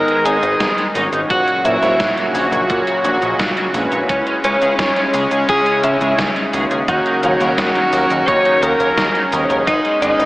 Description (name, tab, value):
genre	synthwave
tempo	86 BPM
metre	4/4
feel	straight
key	C# dorian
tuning	A4 = 439 Hz
part	breathy tenor saxophone	melody	0.0-10.3 s	C#4 to C#5	-18 LUFS	equal	tape echo
part	soft synth bell	second line	0.0-10.3 s	C#5 to C#6	-24 LUFS	equal	none
part	warm analog pad	sustained chords	0.0-10.3 s	A#2 to A#4	-20 LUFS	equal	chorus, tremolo, sidechain pumping
part	crunchy overdriven guitar	riff	0.0-10.3 s	G#3 to F#5	-24 LUFS	right 1 dB	ensemble chorus, tape echo
part	analog synth brass	stabs	0.0-10.3 s	G#2 to D#5	-22 LUFS	equal	chorus, tape echo
part	chorused synth bass	bass	0.0-10.3 s	G#1 to A#2	-22 LUFS	equal	none
part	gated 80s digital drum machine	drums	0.1-10.3 s	cabasa, hi-hat, snare drum	-22 LUFS	equal	gated reverb, gated reverb snare, overdrive
part	electronic kick drum	drums	0.6-9.8 s	none	-25 LUFS	equal	overdrive
room	wet lush hall reverb, RT60 1.9 s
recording	dreamy mix soaked in reverb, AM radio sound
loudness	-13 LUFS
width	side -19 dB against mid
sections	0.0-10.3 A section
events	none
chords	0.0 G#m; 1.3 F#/A#; 4.1 C#m; 6.9 D#m7; 9.7 G#m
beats	0.60 | 1.30 2.00 2.70 3.40 | 4.09 4.79 5.49 6.18 | 6.88 7.58 8.28 8.98 | 9.67